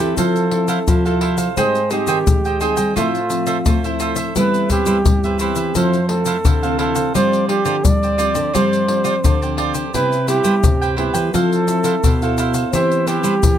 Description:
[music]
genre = samba and choro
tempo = 86 BPM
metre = 4/4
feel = straight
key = C major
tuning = A4 = 445 Hz
[part]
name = breathy flugelhorn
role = melody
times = 0.0-13.6 s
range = F4 to D5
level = -20 LUFS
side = right 2 dB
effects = none
[part]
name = cavaquinho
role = accompaniment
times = 0.0-13.3 s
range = E4 to G5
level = -23 LUFS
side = right 6 dB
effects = none
[part]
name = nylon-string guitar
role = accompaniment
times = 0.0-13.6 s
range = F2 to A4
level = -24 LUFS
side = left 2 dB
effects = none
[part]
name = nylon-string guitar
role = bass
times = 0.0-13.6 s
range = B2 to A3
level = -20 LUFS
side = equal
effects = none
[part]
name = tube shaker, surdo and pandeiro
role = percussion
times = 0.2-13.6 s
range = none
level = -19 LUFS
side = left 2 dB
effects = none
[sound]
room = light reverb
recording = close, detailed microphones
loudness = -15 LUFS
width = side -10 dB against mid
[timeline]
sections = 0.0-13.6 A section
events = none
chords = 0.2 Fmaj7; 1.6 Abmaj7; 3.0 Fmaj7/A; 4.4 Cmaj7/G; 5.8 Fmaj7; 7.2 G7sus4; 9.9 Cmaj7; 11.3 Fmaj7; 12.7 Cmaj7/E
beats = 0.18 0.88 | 1.57 2.27 2.97 3.66 | 4.36 5.06 5.76 6.45 | 7.15 7.85 8.55 9.24 | 9.94 10.64 11.34 12.04 | 12.74 13.43

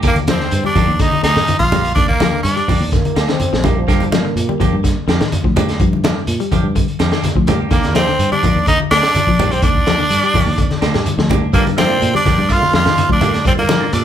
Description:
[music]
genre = afrobeat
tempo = 125 BPM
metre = 4/4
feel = straight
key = unclear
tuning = A4 = 441 Hz
[part]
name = electric guitar at the edge of break-up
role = arpeggios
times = 0.0-14.0 s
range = D3 to G3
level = -21 LUFS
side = left 7 dB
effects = none
[part]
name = semi-hollow electric guitar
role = stabs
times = 0.0-13.8 s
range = F3 to G4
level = -26 LUFS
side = right 3 dB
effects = none
[part]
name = fingered electric bass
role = bass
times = 0.0-14.0 s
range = Bb1 to Bb2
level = -21 LUFS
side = right 1 dB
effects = none
[part]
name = crunchy breakbeat drum kit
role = drums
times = 0.0-14.0 s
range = hi-hat, kick drum, snare drum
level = -19 LUFS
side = equal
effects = none
[part]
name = shekere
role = percussion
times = 0.0-14.0 s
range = none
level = -24 LUFS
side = right 2 dB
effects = none
[part]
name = raspy tenor saxophone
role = melody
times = 0.1-2.9, 7.7-14.0 s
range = Bb3 to F4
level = -17 LUFS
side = right 1 dB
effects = none
[part]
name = bright trumpet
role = second line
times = 0.1-2.9, 7.7-14.0 s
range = Bb4 to F5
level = -24 LUFS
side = right 2 dB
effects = none
[part]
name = congas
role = percussion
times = 0.2-13.8 s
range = none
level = -20 LUFS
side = equal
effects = none
[part]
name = warm trombone section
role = second line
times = 2.9-5.0 s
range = F3 to C4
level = -24 LUFS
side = right 3 dB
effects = none
[part]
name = percussive tonewheel organ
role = accompaniment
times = 11.5-14.0 s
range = A3 to G4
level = -25 LUFS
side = right 3 dB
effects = slow rotary speaker, chorus vibrato
[sound]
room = light reverb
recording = band playing live in one room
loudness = -12 LUFS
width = side -10 dB against mid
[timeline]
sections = 0.0-14.0 A section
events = none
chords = 0.0 Ebmaj7; 3.9 Gm7; 7.7 Ebmaj7; 11.5 Gm7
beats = | 0.04 0.52 1.00 1.48 | 1.96 2.44 2.92 3.40 | 3.88 4.36 4.84 5.32 | 5.80 6.28 6.76 7.24 | 7.72 8.19 8.67 9.15 | 9.63 10.11 10.59 11.06 | 11.54 12.02 12.50 12.97 | 13.45 13.93

